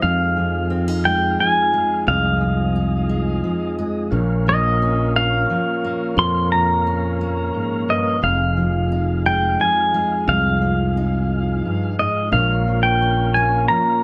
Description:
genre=acoustic folk duo or small band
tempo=88 BPM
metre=3/4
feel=straight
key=F minor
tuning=A4 = 440 Hz
part: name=pedal steel guitar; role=melody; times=0.0-14.0 s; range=Eb5 to C6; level=-22 LUFS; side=equal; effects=none
part: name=fingerpicked steel-string acoustic guitar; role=accompaniment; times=0.0-14.0 s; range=F2 to Eb4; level=-26 LUFS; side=equal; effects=none
part: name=mellow tonewheel organ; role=sustained chords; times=0.0-14.0 s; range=F3 to F5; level=-31 LUFS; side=equal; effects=slow rotary speaker
part: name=mellow fretless electric bass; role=bass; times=0.0-13.7 s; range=F1 to F2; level=-23 LUFS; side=equal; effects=subtle chorus
room=moderate studio ambience, RT60 0.5 s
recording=none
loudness=-19 LUFS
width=mono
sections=0.0-14.0 A section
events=none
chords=0.0 Fm7; 4.1 Bbm; 8.2 Fm7; 12.3 Bbm

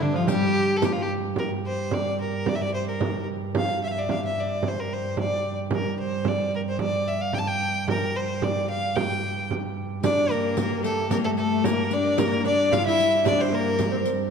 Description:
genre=medieval dance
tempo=111 BPM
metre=2/4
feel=straight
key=G dorian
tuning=A4 = 440 Hz
part: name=rich fiddle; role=melody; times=0.0-14.1 s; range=D4 to A5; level=-26 LUFS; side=left 1 dB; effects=none
part: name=lute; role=second line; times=0.0-0.7, 10.0-14.0 s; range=D3 to F4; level=-31 LUFS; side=right 4 dB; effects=none
part: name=rich viola da gamba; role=second line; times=0.0-0.7, 10.0-14.1 s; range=D3 to F4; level=-27 LUFS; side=left 6 dB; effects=none
part: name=pipe organ, principal chorus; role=drone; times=0.0-14.3 s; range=G2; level=-30 LUFS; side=right 5 dB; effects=none
part: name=frame drum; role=percussion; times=0.3-14.0 s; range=none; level=-29 LUFS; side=right 3 dB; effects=none
part: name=riq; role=percussion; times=0.3-1.1, 10.0-14.3 s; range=none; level=-35 LUFS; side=left 7 dB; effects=none
room=wet scoring stage reverb, RT60 2.0 s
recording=dark, warm production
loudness=-22 LUFS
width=side -6 dB against mid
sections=0.0-1.4 A section; 1.4-10.0 B section; 10.0-14.3 C section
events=none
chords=none

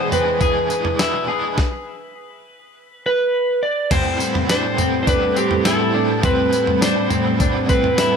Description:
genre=dream pop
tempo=103 BPM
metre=4/4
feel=straight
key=A minor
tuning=A4 = 440 Hz
part: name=electric slide guitar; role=melody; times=0.0-8.2 s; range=G4 to D5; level=-20 LUFS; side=right 1 dB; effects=tape echo
part: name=crunchy overdriven guitar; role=accompaniment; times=0.0-8.2 s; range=E2 to E4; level=-25 LUFS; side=right 3 dB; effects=tremolo, ensemble chorus
part: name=ensemble organ-string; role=sustained chords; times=0.0-8.2 s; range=E2 to A4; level=-22 LUFS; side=equal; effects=ensemble chorus
part: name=semi-hollow electric guitar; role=arpeggios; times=0.0-8.2 s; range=B3 to G#4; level=-24 LUFS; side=left 4 dB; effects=lush chorus, tape echo
part: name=crisp 8-bit digital drum machine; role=drums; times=0.1-8.1 s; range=crash cymbal, kick drum, snare drum, tambourine, toms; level=-21 LUFS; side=equal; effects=none
room=moderate plate reverb, RT60 1.4 s, digital ambience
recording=none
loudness=-16 LUFS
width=side -6 dB against mid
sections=0.0-3.9 A section; 3.9-8.2 A section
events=stop 1.6-3.9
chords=0.0 E7; 3.9 Am9

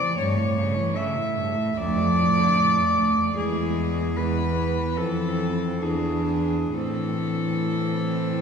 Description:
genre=classical, lyrical piece for cello ensemble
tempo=58-79 BPM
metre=4/4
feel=rubato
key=A minor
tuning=A4 = 440 Hz
part: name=rich cello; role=melody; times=0.0-8.4 s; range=G#4 to E5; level=-25 LUFS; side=left 2 dB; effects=none
part: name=dark cello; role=second line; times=0.0-8.4 s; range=G#3 to D4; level=-28 LUFS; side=right 7 dB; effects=none
part: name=clear cello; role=accompaniment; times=0.0-8.4 s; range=D2 to E3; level=-28 LUFS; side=left 2 dB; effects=none
part: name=warm cello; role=bass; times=0.2-8.4 s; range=E2 to A2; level=-28 LUFS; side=right 2 dB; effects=none
room=wet church reverb, RT60 2.8 s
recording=recorded in a church or concert hall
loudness=-21 LUFS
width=side -6 dB against mid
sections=0.0-8.4 A section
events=none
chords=0.2 A7/G; 1.8 Dm; 3.4 E; 5.0 Fmaj7; 5.8 E7; 6.8 Am

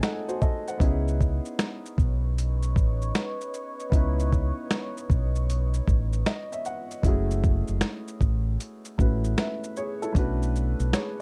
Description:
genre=lo-fi hip hop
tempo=77 BPM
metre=4/4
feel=swing 65% on 16ths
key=C# minor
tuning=A4 = 439 Hz
part: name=dark upright piano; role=accompaniment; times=0.0-11.2 s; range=G#3 to A5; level=-35 LUFS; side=equal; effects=cassette tape, low-pass filter
part: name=dusty soul sampler-style drum kit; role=drums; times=0.0-11.2 s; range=finger snaps, hi-hat, kick drum, shaker, snare drum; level=-27 LUFS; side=equal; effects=none
part: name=deep dark ambient pad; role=sustained chords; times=2.1-7.0 s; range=B4 to C#6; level=-41 LUFS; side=equal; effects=chorus, built-in reverb, low-pass filter
part: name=fingered electric bass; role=bass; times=0.8-10.9 s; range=F#1 to C#2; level=-28 LUFS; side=equal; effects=none
room=little or no reverb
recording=dark, warm production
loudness=-26 LUFS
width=mono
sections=0.0-7.0 A section; 7.0-11.2 B section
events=upright piano fill 0.0-0.8, 5.9-7.0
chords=0.0 G#7b9; 0.8 C#m9; 7.0 F#m9; 10.2 Bm7

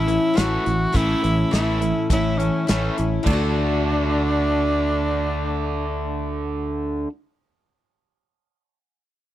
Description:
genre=folk rock and heartland rock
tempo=103 BPM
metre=4/4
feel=straight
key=D major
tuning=A4 = 438 Hz
part: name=breathy tenor saxophone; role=melody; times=0.0-6.3 s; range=C#4 to F#4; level=-25 LUFS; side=right 1 dB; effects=none
part: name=picked twelve-string acoustic guitar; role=accompaniment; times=0.0-7.1 s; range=A2 to F#4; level=-26 LUFS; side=left 3 dB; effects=none
part: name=overdriven electric guitar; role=riff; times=0.0-7.1 s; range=A2 to F#4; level=-26 LUFS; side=right 2 dB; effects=none
part: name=fingered electric bass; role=bass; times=0.0-7.0 s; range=A1 to D2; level=-25 LUFS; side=equal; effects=none
part: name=natural country drum kit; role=drums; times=0.1-3.4 s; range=crash cymbal, hi-hat, kick drum, snare drum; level=-23 LUFS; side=equal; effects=none
room=little or no reverb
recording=dry, close 1970s-style studio recording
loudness=-19 LUFS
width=side -13 dB against mid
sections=0.0-3.3 A section; 3.3-5.6 B section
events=none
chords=0.0 A; 3.3 D

